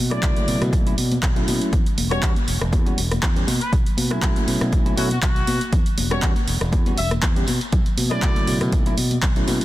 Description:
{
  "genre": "filtered disco house",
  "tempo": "120 BPM",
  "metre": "4/4",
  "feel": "swing 54% on 16ths",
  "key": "unclear",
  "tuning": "A4 = 443 Hz",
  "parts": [
    { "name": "fingered electric bass", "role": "bass", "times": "0.0-9.6 s", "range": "E1 to B2", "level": "-24 LUFS", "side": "equal", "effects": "sidechain pumping, low-pass filter" },
    { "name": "clear trumpet section", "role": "melody", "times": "0.1-8.6 s", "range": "F#4 to E5", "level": "-30 LUFS", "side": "left 2 dB", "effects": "sidechain pumping, low-pass filter, tape echo" },
    { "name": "bell-like tine electric piano", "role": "accompaniment", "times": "0.1-9.6 s", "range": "C#3 to G4", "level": "-26 LUFS", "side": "equal", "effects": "phaser, sidechain pumping, low-pass filter" },
    { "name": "punchy analog drum machine", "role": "drums", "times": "0.1-9.6 s", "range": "handclaps, hi-hat, rim click", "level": "-26 LUFS", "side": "equal", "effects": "overdrive, sidechain pumping on hats, small room ambience" },
    { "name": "tambourine and congas", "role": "percussion", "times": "0.1-9.6 s", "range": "none", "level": "-31 LUFS", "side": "left 4 dB", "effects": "sidechain pumping on perc, low-pass filter on perc" },
    { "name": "electronic kick drum", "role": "drums", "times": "0.2-9.3 s", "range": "none", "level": "-21 LUFS", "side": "equal", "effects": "overdrive, small room ambience" }
  ],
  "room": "digital ambience",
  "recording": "dense, heavily limited modern master",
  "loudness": "-18 LUFS",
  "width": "side -16 dB against mid",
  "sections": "0.0-9.6 A section",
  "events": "none",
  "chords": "0.0 B7sus4; 1.7 Em69; 3.5 B7sus4; 5.7 Em69; 7.5 B7sus4"
}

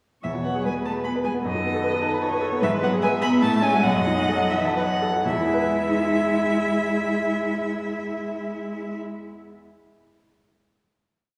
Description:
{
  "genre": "quick classical-period movement for piano quartet",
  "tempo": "115-154 BPM",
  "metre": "3/4",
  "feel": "rubato",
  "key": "E major",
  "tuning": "A4 = 440 Hz",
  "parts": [
    { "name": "warm violin", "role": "melody", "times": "0.2-9.0 s", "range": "D#5 to B5", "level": "-29 LUFS", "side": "equal", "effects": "none" },
    { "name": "rich cello", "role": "second line", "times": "0.2-9.0 s", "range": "D#3 to E4", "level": "-30 LUFS", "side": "equal", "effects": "none" },
    { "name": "bright baby grand piano", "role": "accompaniment", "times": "0.2-9.8 s", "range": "B1 to B5", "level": "-27 LUFS", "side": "equal", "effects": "none" },
    { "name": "rich viola", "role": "accompaniment", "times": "0.2-9.0 s", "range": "G#3 to E5", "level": "-31 LUFS", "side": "equal", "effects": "none" }
  ],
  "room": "wet scoring stage reverb, RT60 2.0 s",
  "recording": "heard from further back in the room, small room reverb",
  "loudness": "-23 LUFS",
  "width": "mono",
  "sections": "0.2-5.3 A section; 5.3-8.2 final chord",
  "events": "slowing down 2.0-5.3",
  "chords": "0.2 E; 1.4 B7/F#; 2.6 E/G#; 3.4 F#m/A; 3.8 B7; 5.3 E"
}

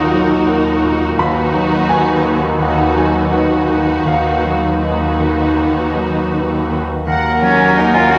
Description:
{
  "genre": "cinematic",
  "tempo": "79-86 BPM",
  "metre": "4/4",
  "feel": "rubato",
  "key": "unclear",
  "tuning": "A4 = 440 Hz",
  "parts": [
    { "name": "rich studio violin section", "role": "melody", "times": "0.0-8.2 s", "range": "Bb4 to Gb5", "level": "-29 LUFS", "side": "equal", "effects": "none" },
    { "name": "warm studio violin section", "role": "second line", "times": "0.0-8.2 s", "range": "Gb4 to Ab5", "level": "-24 LUFS", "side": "equal", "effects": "none" },
    { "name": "rich studio viola section", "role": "accompaniment", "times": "0.0-8.2 s", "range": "Bb3 to Eb4", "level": "-22 LUFS", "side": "equal", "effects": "none" },
    { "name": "warm grand piano", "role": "accompaniment", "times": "0.0-8.2 s", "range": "Eb2 to Eb6", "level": "-22 LUFS", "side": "equal", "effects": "none" },
    { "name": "concert harp", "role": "arpeggios", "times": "0.0-8.2 s", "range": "Eb3 to B4", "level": "-26 LUFS", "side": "equal", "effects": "none" },
    { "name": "clear studio double bass section", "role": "bass", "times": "0.0-8.2 s", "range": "Eb2", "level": "-23 LUFS", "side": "equal", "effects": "none" },
    { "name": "warm studio cello section", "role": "bass", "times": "0.0-8.2 s", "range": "Eb2", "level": "-27 LUFS", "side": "equal", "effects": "none" },
    { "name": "clear oboe", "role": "second line", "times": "7.1-8.2 s", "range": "Bb4", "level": "-21 LUFS", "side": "equal", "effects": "none" },
    { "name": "mellow concert flute", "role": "second line", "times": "7.1-8.2 s", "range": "Gb5", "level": "-20 LUFS", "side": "equal", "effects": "none" },
    { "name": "mellow French horn section", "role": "sustained chords", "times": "7.1-8.2 s", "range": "Gb3 to Bb3", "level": "-24 LUFS", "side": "equal", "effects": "none" },
    { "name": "clear cello", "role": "melody", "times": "7.4-8.2 s", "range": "Db4 to Gb4", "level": "-16 LUFS", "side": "equal", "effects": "none" }
  ],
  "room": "wet concert hall reverb, RT60 2.0 s",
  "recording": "none",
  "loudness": "-15 LUFS",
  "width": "mono",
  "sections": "0.0-7.1 A section; 7.1-8.2 B section",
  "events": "none",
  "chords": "0.0 Ebm; 1.2 B/D#; 7.1 Ebm"
}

